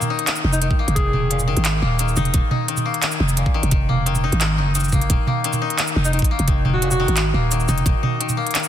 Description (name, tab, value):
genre	half-time drum and bass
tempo	174 BPM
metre	4/4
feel	half-time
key	Eb minor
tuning	A4 = 441 Hz
part	koto	arpeggios	0.0-8.7 s	Bb2 to Eb4	-24 LUFS	left 6 dB	dub echo
part	organic electronic drum kit	drums	0.0-8.7 s	handclaps, hi-hat, shaker, toms	-22 LUFS	right 2 dB	none
part	growling 808-style bass	bass	0.4-7.9 s	Eb1 to Ab1	-20 LUFS	equal	none
part	warm alto saxophone	melody	0.5-1.4, 6.0-7.3 s	Eb4 to Ab4	-28 LUFS	equal	vintage 12-bit sampler grit, dub echo
part	electronic kick drum	drums	0.7-7.9 s	none	-19 LUFS	equal	none
room	light reverb, digital ambience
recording	dense, heavily limited modern master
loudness	-17 LUFS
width	side -10 dB against mid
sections	0.0-8.7 A section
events	none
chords	0.0 Eb5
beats	0.27 0.61 | 0.96 1.30 1.65 2.00 | 2.34 2.68 3.03 3.37 | 3.72 4.06 4.41 4.75 | 5.10 5.44 5.79 6.13 | 6.48 6.82 7.17 7.51 | 7.86 8.20 8.55